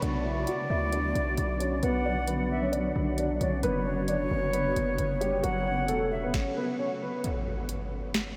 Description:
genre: hip hop, trap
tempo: 133 BPM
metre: 4/4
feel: half-time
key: B minor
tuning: A4 = 440 Hz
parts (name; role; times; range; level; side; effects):
- dark concert grand piano; melody; 0.0-7.2 s; F#3 to F#5; -34 LUFS; equal; analog chorus, low-pass filter, delay
- reedy concert flute; second line; 0.0-6.3 s; C#5 to F#5; -36 LUFS; equal; delay
- granular cloud pad; sustained chords; 0.0-6.3 s; C#3 to F#4; -37 LUFS; equal; built-in reverb, lush chorus, low-pass filter
- distorted 808-style bass; bass; 0.0-6.3 s; E1 to D2; -34 LUFS; equal; distortion
- trap drum kit; drums; 0.0-8.3 s; finger snaps, hi-hat, kick drum, snare drum; -38 LUFS; equal; none
- impact; sound effects; 7.2-8.4 s; none; -36 LUFS; equal; none
room: wet huge ambient reverb, RT60 7.8 s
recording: dreamy mix soaked in reverb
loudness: -29 LUFS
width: mono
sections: 0.0-7.2 A section; 7.2-8.4 B section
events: stop 6.3-7.2; break 7.2-8.4; impact 7.2-8.4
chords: 0.0 Bm; 3.6 F#sus4; 7.2 N.C.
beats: | 0.02 0.47 0.93 1.38 | 1.83 2.28 2.73 3.18 | 3.63 4.08 4.54 4.99 | 5.44 5.89 6.34 6.79 | 7.24 7.69 8.14

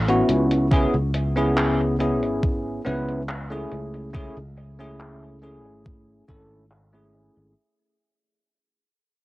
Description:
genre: vaporwave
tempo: 70 BPM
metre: 4/4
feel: straight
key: unclear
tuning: A4 = 439 Hz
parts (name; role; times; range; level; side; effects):
- sustaining fretless electric bass; bass; 0.0-7.5 s; G#1 to C#2; -26 LUFS; equal; analog chorus
- bell-like tine electric piano; accompaniment; 0.1-7.5 s; A3 to B4; -24 LUFS; equal; analog chorus, cassette tape, analog delay
- gated 80s digital drum machine; drums; 0.1-7.5 s; handclaps, hi-hat; -30 LUFS; equal; gated reverb, overdrive, low-pass filter on hats, low-pass filter on snare, low-pass filter on room
- electronic kick drum; drums; 0.7-6.5 s; none; -22 LUFS; equal; overdrive
room: light reverb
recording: home recording on cassette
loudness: -20 LUFS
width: side -18 dB against mid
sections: 0.0-7.6 A section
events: fade-out 0.0-7.6; filter sweep on drum 0.0-7.6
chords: 0.0 A69; 0.7 C#m7; 3.7 Amaj7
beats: | 0.71 1.57 2.43 3.29 | 4.14 5.00 5.86 6.71

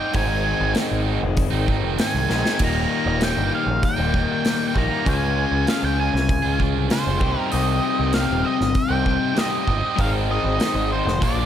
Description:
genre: classic rock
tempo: 98 BPM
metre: 4/4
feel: straight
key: unclear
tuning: A4 = 440 Hz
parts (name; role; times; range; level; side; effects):
- octave-fuzz lead guitar; melody; 0.0-11.5 s; C5 to Bb5; -26 LUFS; right 1 dB; distortion, tape echo
- distorted electric guitar; riff; 0.0-11.5 s; Eb2 to Ab4; -27 LUFS; right 11 dB; overdrive
- overdriven electric guitar; riff; 0.0-11.5 s; Eb2 to Ab4; -25 LUFS; left 10 dB; none
- growling picked electric bass; bass; 0.1-11.5 s; Eb1 to Db2; -24 LUFS; right 1 dB; overdrive
- big rock drum kit; drums; 0.1-11.4 s; crash cymbal, hi-hat, kick drum, snare drum; -25 LUFS; equal; none
room: small room ambience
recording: none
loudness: -18 LUFS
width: side -10 dB against mid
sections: 0.0-11.5 A section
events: drum fill 2.3-2.6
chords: 0.1 Ab; 2.6 Eb; 5.1 Db; 7.2 Cm; 10.0 Ab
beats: | 0.15 0.76 1.38 1.99 | 2.60 3.22 3.83 4.45 | 5.06 5.68 6.29 6.91 | 7.52 8.14 8.76 9.37 | 9.99 10.61 11.22

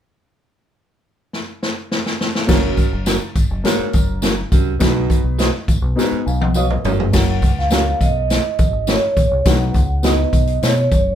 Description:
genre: uptempo 1960s-style soul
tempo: 103 BPM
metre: 4/4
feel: straight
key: F# major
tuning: A4 = 443 Hz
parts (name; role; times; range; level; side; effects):
- swinging big-band drum kit; drums; 1.3-11.0 s; crash cymbal, hi-hat, kick drum, snare drum, toms; -17 LUFS; equal; none
- dark upright piano; accompaniment; 2.5-10.7 s; A#3 to G#5; -22 LUFS; left 2 dB; none
- raspy baritone saxophone; riff; 2.5-7.1 s; F#2 to B2; -24 LUFS; right 9 dB; none
- deep dub fingered electric bass; bass; 2.5-11.2 s; F#1 to B2; -20 LUFS; equal; none
- tambourine; percussion; 2.5-11.1 s; none; -33 LUFS; left 5 dB; none
- electric guitar at the edge of break-up; stabs; 3.1-10.1 s; C#4 to D#5; -23 LUFS; right 4 dB; none
- vibraphone with medium mallets; melody; 7.1-11.2 s; C#5 to F#5; -20 LUFS; right 2 dB; none
room: moderate studio ambience, RT60 0.4 s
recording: band playing live in one room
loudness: -15 LUFS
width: side -10 dB against mid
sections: 0.2-2.5 A section; 2.5-7.1 B section; 7.1-11.2 C section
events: drum fill 1.3-2.5, 6.0-7.1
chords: 0.2 N.C.; 2.5 F#; 4.8 B; 7.1 F#; 9.5 B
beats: | 0.16 0.74 1.32 1.91 | 2.49 3.07 3.65 4.23 | 4.81 5.39 5.97 6.56 | 7.14 7.72 8.30 8.88 | 9.46 10.04 10.62

